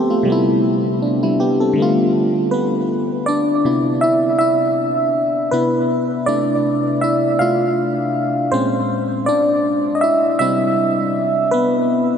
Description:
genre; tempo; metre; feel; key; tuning
R&B; 80 BPM; 4/4; swing 54% on 16ths; C major; A4 = 439 Hz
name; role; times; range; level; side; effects
FM electric piano; solo; 0.0-12.2 s; Bb2 to F5; -15 LUFS; equal; chorus, diffuse ambient delay
room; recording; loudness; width
wet huge ambient reverb, RT60 7.5 s; dreamy mix soaked in reverb; -15 LUFS; side -7 dB against mid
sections
0.0-3.3 A section; 3.3-12.2 B section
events
FM electric piano solo 3.3-12.2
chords
0.3 Am9; 1.8 G9; 3.3 Cmaj9; 6.3 Fmaj7/C; 8.5 Bbm9; 9.3 Cmaj9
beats
| 0.27 1.02 1.77 2.52 | 3.27 4.02 4.77 5.52 | 6.27 7.02 7.77 8.52 | 9.27 10.02 10.77 11.52

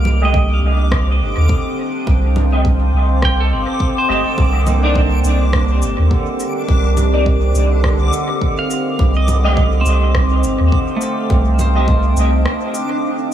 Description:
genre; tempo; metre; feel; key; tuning
ambient dub; 104 BPM; 4/4; swing 58% on 16ths; C dorian; A4 = 441 Hz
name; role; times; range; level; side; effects
deep dark ambient pad; sustained chords; 0.0-13.3 s; C4 to A5; -22 LUFS; equal; chorus, built-in reverb
pedal steel guitar; arpeggios; 0.0-13.3 s; A3 to A5; -24 LUFS; right 2 dB; low-pass filter, tape echo
warm sub bass; bass; 0.0-12.5 s; G1 to Eb2; -14 LUFS; right 1 dB; none
backwards swelling texture; texture; 0.0-13.3 s; D3 to D6; -25 LUFS; equal; built-in reverb
electronic congas, rim click and cabasa; drums; 0.1-12.9 s; none; -26 LUFS; left 1 dB; dub echo
clean electric guitar; stabs; 0.2-11.9 s; A3 to Eb5; -25 LUFS; equal; ensemble chorus, low-pass filter, dub echo
electronic kick drum; drums; 0.3-12.0 s; none; -19 LUFS; equal; overdrive
room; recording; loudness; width
light reverb; small room ambience; -13 LUFS; side -10 dB against mid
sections
0.0-13.3 A section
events
filter sweep on pedal steel guitar 0.0-13.3; break 12.5-13.3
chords
0.0 Cm9; 9.0 F9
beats
0.34 0.92 1.50 | 2.07 2.65 3.23 3.80 | 4.38 4.96 5.53 6.11 | 6.69 7.26 7.84 8.42 | 8.99 9.57 10.15 10.72 | 11.30 11.88 12.46 13.03

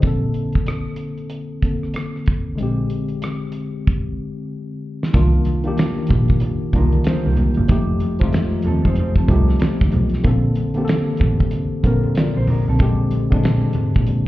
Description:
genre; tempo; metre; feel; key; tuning
R&B, neo-soul; 94 BPM; 4/4; swing 61% on 16ths; unclear; A4 = 440 Hz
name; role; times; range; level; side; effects
tine electric piano; accompaniment; 0.0-14.3 s; D3 to Bb4; -21 LUFS; left 2 dB; medium stereo tremolo
clear double bass; bass; 0.0-14.1 s; F1 to Bb2; -20 LUFS; equal; none
damped 70s drum kit; drums; 0.0-14.3 s; finger snaps, hi-hat, kick drum, rim click, snare drum; -19 LUFS; right 1 dB; none
congas; percussion; 5.5-14.3 s; none; -29 LUFS; right 3 dB; none
mellow electric guitar; second line; 6.8-13.0 s; Bb3 to D5; -29 LUFS; right 4 dB; none
room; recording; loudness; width
light reverb, studio reverb; heard muffled through a wall, club reverb, EQ; -16 LUFS; side -16 dB against mid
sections
0.0-5.1 A section; 5.1-14.3 B section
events
drum fill 3.9-5.1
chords
0.0 Bbmaj9; 2.6 Bb13; 5.1 Cm11; 7.7 F9; 10.2 Bbmaj9; 12.8 Bb13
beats
| 0.04 0.67 1.31 1.95 | 2.59 3.23 3.87 4.50 | 5.14 5.78 6.42 7.06 | 7.70 8.33 8.97 9.61 | 10.25 10.89 11.53 12.16 | 12.80 13.44 14.08

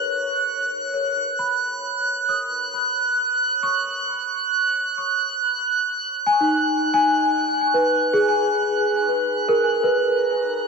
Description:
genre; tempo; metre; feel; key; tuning
ambient; 67 BPM; 4/4; straight; B major; A4 = 440 Hz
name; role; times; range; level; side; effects
worn celesta; arpeggios; 0.0-10.7 s; D#4 to D#6; -21 LUFS; left 1 dB; ping-pong delay, shimmer reverb
drifting glass-harmonics texture; texture; 0.0-10.7 s; F#6; -22 LUFS; right 4 dB; chorus, built-in reverb, shimmer reverb
room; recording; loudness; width
wet huge ambient reverb, RT60 7.3 s; dreamy mix soaked in reverb; -19 LUFS; side -4 dB against mid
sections
0.0-10.7 A section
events
fade-in on celesta 0.0-10.7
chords
0.0 Bmaj13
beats
0.02 0.92 1.81 | 2.71 3.60 4.50 5.39 | 6.29 7.18 8.08 8.98 | 9.87

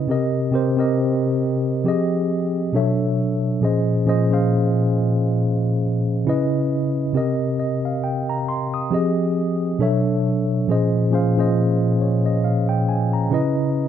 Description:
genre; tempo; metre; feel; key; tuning
R&B; 68 BPM; 4/4; swing 57% on 16ths; Bb dorian; A4 = 440 Hz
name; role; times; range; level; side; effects
mellow tine electric piano; solo; 0.0-13.9 s; Bb2 to Eb6; -18 LUFS; equal; medium stereo tremolo
room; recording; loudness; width
moderate studio reverb, RT60 0.5 s; dark, warm production; -18 LUFS; side -9 dB against mid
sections
0.0-13.9 A section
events
none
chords
0.1 Cm7; 1.9 Fm9; 2.7 Bm11; 3.6 Bbm11; 6.3 Dbm7; 7.2 Cm7; 8.9 Fm9; 9.8 Bm11; 10.7 Bbm11; 13.3 Dbm7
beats
| 0.09 0.97 1.86 2.74 | 3.62 4.50 5.39 6.27 | 7.15 8.03 8.91 9.80 | 10.68 11.56 12.45 13.33

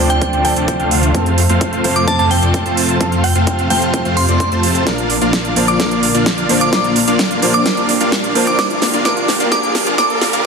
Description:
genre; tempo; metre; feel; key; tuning
EDM, festival progressive house; 129 BPM; 4/4; straight; unclear; A4 = 441 Hz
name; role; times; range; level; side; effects
warm baby grand piano; accompaniment; 0.0-10.5 s; Bb2 to C5; -21 LUFS; equal; sidechain pumping, digital delay
lush unison pad; sustained chords; 0.0-10.5 s; C3 to Bb4; -24 LUFS; equal; chorus, sidechain pumping
dense compressed supersaw; riff; 0.0-10.4 s; A3 to A5; -18 LUFS; equal; sidechain pumping, low-pass filter, digital delay
detuned saw bass; bass; 0.0-10.4 s; G1 to F2; -20 LUFS; equal; sidechain pumping
glassy synth bell; melody; 0.1-10.1 s; G5 to D6; -19 LUFS; right 1 dB; chorus, phaser, digital delay
big-room dance drum kit; drums; 0.1-10.4 s; hi-hat, snare drum; -19 LUFS; right 2 dB; none
electronic kick drum; drums; 0.2-10.1 s; none; -23 LUFS; equal; high-pass filter on kick
riser; sound effects; 7.3-10.5 s; none; -25 LUFS; equal; none
room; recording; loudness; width
moderate scoring stage reverb, RT60 1.5 s; dense, heavily limited modern master, high-pass filter; -12 LUFS; side -5 dB against mid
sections
0.0-10.5 A section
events
build-up 0.0-10.5; filter sweep on analog synth pad 0.0-10.5; drum fill 4.9-10.5; riser 7.3-10.5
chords
0.0 Dm7; 1.1 F; 4.9 Bb; 8.6 Gm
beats
0.21 0.68 | 1.15 1.61 2.08 2.54 | 3.01 3.47 3.94 4.40 | 4.87 5.33 5.80 6.26 | 6.73 7.19 7.66 8.12 | 8.59 9.05 9.52 9.98 | 10.45

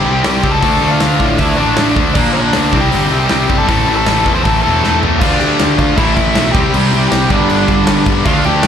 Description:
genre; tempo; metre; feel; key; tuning
punk rock; 157 BPM; 4/4; straight; D dorian from 5.2 s; A4 = 440 Hz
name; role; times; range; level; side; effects
smooth overdriven lead guitar; melody; 0.0-8.7 s; D4 to C6; -18 LUFS; equal; slapback echo, tape echo
cranked stack guitar; riff; 0.0-8.7 s; G2 to F4; -20 LUFS; right 11 dB; overdrive
high-gain distorted guitar; riff; 0.0-8.7 s; G2 to D4; -19 LUFS; right 1 dB; distortion
tight distorted guitar; riff; 0.0-8.7 s; G2 to D4; -17 LUFS; left 13 dB; distortion, slapback echo
fuzz picked electric bass; bass; 0.0-8.7 s; E1 to A2; -17 LUFS; equal; overdrive
big rock drum kit; drums; 0.2-8.7 s; crash cymbal, hi-hat, kick drum, snare drum, toms; -17 LUFS; equal; none
room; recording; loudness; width
little or no reverb; live gig heard through the venue's PA, club reverb; -10 LUFS; side -8 dB against mid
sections
0.0-5.2 A section; 5.2-8.7 B section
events
drum fill 4.8-5.2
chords
0.0 C; 0.6 Dm; 2.2 Bb; 2.7 C; 3.7 Am; 5.2 Dm; 6.0 Am; 6.5 C; 7.3 G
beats
0.24 | 0.63 1.01 1.39 1.78 | 2.16 2.54 2.92 3.31 | 3.69 4.07 4.45 4.83 | 5.21 5.60 5.98 6.36 | 6.74 7.12 7.50 7.88 | 8.26 8.63

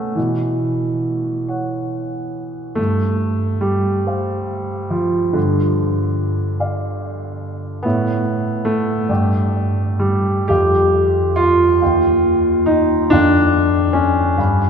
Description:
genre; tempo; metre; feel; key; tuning
classical, impressionist solo piano; 41-49 BPM (dotted quarters); 6/8; rubato; unclear; A4 = 440 Hz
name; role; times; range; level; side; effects
warm concert grand piano; solo; 0.0-14.7 s; D#2 to B5; -15 LUFS; equal; none
room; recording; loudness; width
wet cathedral reverb, RT60 5.0 s; recorded in a church or concert hall; -15 LUFS; side -6 dB against mid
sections
0.0-14.7 A section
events
none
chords
0.0 Bsus2; 2.8 G9sus4; 5.4 Dm/G; 7.8 Aadd9; 9.1 Gsus2; 10.5 Fsus2; 11.8 D#add9; 13.1 Fsus2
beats
| 0.17 1.47 | 2.78 4.07 | 5.36 6.60 | 7.84 9.09 | 10.49 11.81 | 13.11 14.38

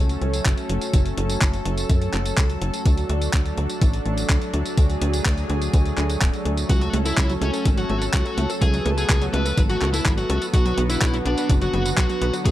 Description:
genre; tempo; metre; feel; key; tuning
italo disco; 125 BPM; 4/4; straight; F# minor; A4 = 439 Hz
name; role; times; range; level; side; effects
lush unison pad; sustained chords; 0.0-12.5 s; D3 to A4; -27 LUFS; equal; chorus
tight sequencer bass; bass; 0.0-12.5 s; D1 to F#2; -24 LUFS; equal; none
clean 12-bit digital drum machine; drums; 0.1-12.5 s; handclaps, hi-hat, tambourine; -28 LUFS; equal; none
electronic kick drum; drums; 0.5-12.5 s; none; -20 LUFS; equal; none
fuzz lead guitar; melody; 6.7-12.5 s; C#4 to B4; -26 LUFS; left 1 dB; distortion, tape echo
analog pluck; arpeggios; 6.7-12.5 s; F#3 to B4; -30 LUFS; right 1 dB; chorus, cassette tape, ping-pong delay
room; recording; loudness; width
little or no reverb; none; -19 LUFS; side -14 dB against mid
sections
0.0-12.5 A section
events
none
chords
0.0 F#m; 2.9 D; 6.7 F#m; 10.5 Bm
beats
0.46 | 0.94 1.42 1.90 2.38 | 2.85 3.33 3.81 4.29 | 4.78 5.25 5.74 6.21 | 6.70 7.17 7.66 8.13 | 8.62 9.10 9.57 10.05 | 10.54 11.02 11.49 11.97 | 12.46

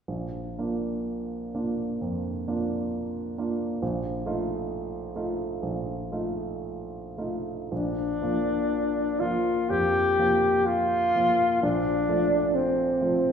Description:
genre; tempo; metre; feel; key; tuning
classical, romantic duo for alto saxophone and grand piano; 62 BPM; 4/4; uneven beats, rubato; Bb major; A4 = 440 Hz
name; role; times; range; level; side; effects
warm grand piano; accompaniment; 0.1-13.3 s; Bb1 to F4; -29 LUFS; right 2 dB; none
warm alto saxophone; melody; 7.7-13.3 s; C4 to G4; -23 LUFS; left 1 dB; none
room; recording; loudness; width
wet scoring stage reverb, RT60 1.6 s; heard from further back in the room; -24 LUFS; side -7 dB against mid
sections
0.1-7.7 A section; 7.7-13.3 B section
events
none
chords
0.1 Bb; 3.8 F7/Bb; 7.7 Bb; 11.6 F/Bb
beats
| 0.09 1.07 2.02 2.93 | 3.82 4.69 5.62 6.63 | 7.71 8.71 9.70 10.67 | 11.63 12.55

